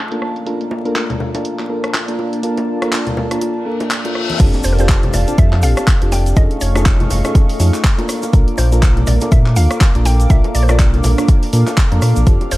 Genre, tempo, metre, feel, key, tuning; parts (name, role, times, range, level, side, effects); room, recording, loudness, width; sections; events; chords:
deep house; 122 BPM; 4/4; swing 58% on 16ths; A4 = 440 Hz
warm analog pad; sustained chords; 0.0-12.6 s; A3 to D6; -26 LUFS; right 1 dB; chorus, sidechain pumping
ethereal airy pad; texture; 0.0-12.6 s; A3 to F5; -29 LUFS; equal
mellow FM electric piano; stabs; 0.1-12.6 s; Bb3 to Bb4; -22 LUFS; left 1 dB; chorus, sidechain pumping, tape echo
house drum kit; drums; 0.1-12.6 s; crash cymbal, handclaps, hi-hat, rim click; -23 LUFS; equal; low-pass filter on snare, low-pass filter on hats, low-pass filter on cymbals, low-pass filter on room
bongos and congas; percussion; 0.7-12.5 s; -26 LUFS; left 1 dB; overdrive
reverse cymbal and impact; sound effects; 3.7-6.4 s; -26 LUFS; left 2 dB
sub bass with octave; bass; 4.4-12.6 s; F1 to Bb2; -14 LUFS; equal; tube saturation, sidechain pumping
electronic kick drum; drums; 4.4-12.4 s; -12 LUFS; equal
egg shaker; percussion; 4.4-12.6 s; -31 LUFS; left 2 dB
mallet-like synth pluck; melody; 4.6-12.6 s; Bb4 to G5; -26 LUFS; equal; chorus, analog delay
little or no reverb; vinyl crackle; -12 LUFS; side -18 dB against mid
0.0-4.4 A section; 4.4-12.6 B section
filter sweep on analog synth pad 0.0-4.4; reverse cymbal 3.7-4.4; drop 4.4-12.6; impact 4.4-6.4
0.2 Bbmaj7; 4.4 F69; 6.4 F7alt; 8.1 Bbmaj7